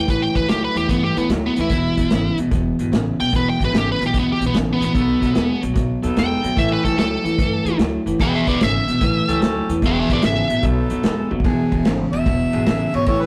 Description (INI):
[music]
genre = electric blues shuffle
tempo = 148 BPM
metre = 4/4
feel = swing 67% on 8ths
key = E mixolydian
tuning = A4 = 441 Hz
[part]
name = smooth overdriven lead guitar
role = melody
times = 0.0-10.6 s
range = B3 to G5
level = -24 LUFS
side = equal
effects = none
[part]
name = electric guitar through a small old amp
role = riff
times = 0.0-13.3 s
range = E2 to G#3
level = -23 LUFS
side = equal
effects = none
[part]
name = upright bass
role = bass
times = 0.0-13.2 s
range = E1 to G2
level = -28 LUFS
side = equal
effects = none
[part]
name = warm soul drum kit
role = drums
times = 0.1-13.2 s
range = hi-hat, kick drum, ride cymbal, snare drum, toms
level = -24 LUFS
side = equal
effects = none
[part]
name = bright saxophone section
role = stabs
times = 4.9-13.3 s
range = B3 to A4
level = -31 LUFS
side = equal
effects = none
[part]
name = warm harmonica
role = second line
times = 12.1-13.3 s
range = B4 to E5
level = -25 LUFS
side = equal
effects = overdrive
[sound]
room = light reverb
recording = rough rehearsal-room recording, tube saturation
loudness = -19 LUFS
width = mono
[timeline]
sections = 0.0-11.4 A section; 11.4-13.3 A section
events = lead electric guitar solo 0.0-11.4; drum fill 11.2; harmonica solo 11.4-13.3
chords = 0.0 A7; 1.7 E; 4.9 B7; 6.6 A7; 8.2 E7; 9.0 A7; 9.8 E7; 10.6 B7; 11.4 E7